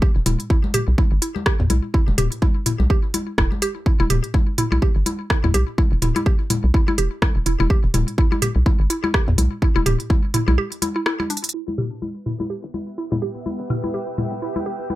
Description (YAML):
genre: minimal techno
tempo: 125 BPM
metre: 4/4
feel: swing 57% on 16ths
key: E minor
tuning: A4 = 440 Hz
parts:
  - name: mallet-like synth pluck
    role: riff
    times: 0.0-14.9 s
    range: D4 to G4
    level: -26 LUFS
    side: equal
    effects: chorus, sidechain pumping, ping-pong delay
  - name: electronic kick drum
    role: drums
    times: 0.0-10.2 s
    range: none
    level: -18 LUFS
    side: equal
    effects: small room ambience
  - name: hollow knocking FM bass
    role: bass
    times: 0.2-14.8 s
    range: D1 to E2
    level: -19 LUFS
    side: equal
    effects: sidechain pumping, high-pass filter
  - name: house drum kit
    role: drums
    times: 0.3-14.8 s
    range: hi-hat, rim click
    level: -23 LUFS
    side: equal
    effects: small room ambience
  - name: electronic toms, congas and woodblock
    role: percussion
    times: 0.3-15.0 s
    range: none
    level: -26 LUFS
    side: left 2 dB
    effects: small room ambience
  - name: bubbling stepped-filter texture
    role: texture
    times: 12.3-15.0 s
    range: B4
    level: -36 LUFS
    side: right 2 dB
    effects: chorus, built-in reverb, sidechain pumping
  - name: granular cloud pad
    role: texture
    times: 12.7-15.0 s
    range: B3 to G5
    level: -31 LUFS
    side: right 1 dB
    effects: built-in reverb, sidechain pumping
room: little or no reverb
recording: low-pass filter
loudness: -18 LUFS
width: side -16 dB against mid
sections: 0.0-11.5 A section; 11.5-15.0 B section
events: break 10.6-11.5; drum fill 11.3; filter sweep on synth arpeggio sound 11.5-15.0; filter sweep 11.5-15.0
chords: 0.0 Em